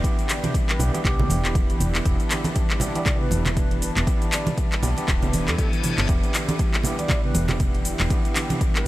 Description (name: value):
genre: afro house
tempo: 119 BPM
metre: 4/4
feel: swing 57% on 16ths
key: E minor pentatonic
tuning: A4 = 440 Hz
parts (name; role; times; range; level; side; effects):
- warm analog pad; sustained chords; 0.0-8.9 s; E4 to A5; -34 LUFS; left 1 dB; chorus, sidechain pumping
- kalimba; arpeggios; 0.0-8.7 s; D3 to B3; -32 LUFS; right 1 dB; sidechain pumping, analog delay
- overdriven tine electric piano; stabs; 0.0-8.8 s; B3 to G4; -32 LUFS; right 2 dB; medium tremolo, sidechain pumping, analog delay
- afro-pop drum kit; drums; 0.0-8.8 s; cabasa, handclaps, hi-hat, toms; -27 LUFS; left 1 dB; overdrive, studio reverb
- electronic kick drum; drums; 0.0-8.7 s; none; -23 LUFS; equal; studio reverb
- congas; percussion; 0.4-8.6 s; none; -29 LUFS; right 2 dB; none
- bright bass bansuri; melody; 0.7-8.9 s; G4 to D5; -36 LUFS; right 1 dB; analog delay
- woody FM bass; bass; 0.8-8.1 s; D1 to E2; -25 LUFS; equal; sidechain pumping
- reverse cymbal; sound effects; 5.3-6.1 s; none; -36 LUFS; left 6 dB; none
room: light reverb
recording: none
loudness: -20 LUFS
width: side -16 dB against mid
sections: 0.0-8.9 A section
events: reverse cymbal 5.3-6.1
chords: 0.0 Em7